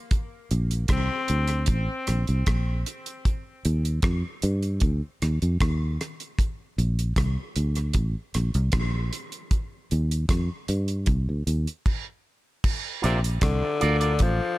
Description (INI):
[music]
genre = dub reggae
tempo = 77 BPM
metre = 4/4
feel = straight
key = Bb major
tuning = A4 = 441 Hz
[part]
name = damped 70s drum kit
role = drums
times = 0.1-14.4 s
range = crash cymbal, hi-hat, kick drum, rim click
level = -26 LUFS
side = equal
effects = none
[part]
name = fingered electric bass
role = bass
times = 0.5-14.4 s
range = A1 to G2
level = -24 LUFS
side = equal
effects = none
[part]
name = raspy tenor saxophone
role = melody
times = 0.9-1.7, 13.0-14.6 s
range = C3 to C4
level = -29 LUFS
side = left 3 dB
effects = tape echo
[part]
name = electric guitar with an envelope filter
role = accompaniment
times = 13.0-14.1 s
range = F4 to D5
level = -29 LUFS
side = right 5 dB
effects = tape echo
[sound]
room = small room ambience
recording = none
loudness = -23 LUFS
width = side -18 dB against mid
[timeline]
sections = 0.1-12.6 A section; 12.6-14.6 B section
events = stop 11.9-12.6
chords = 0.1 Bb; 3.2 Eb; 6.4 Bb; 9.5 Eb; 12.6 Bb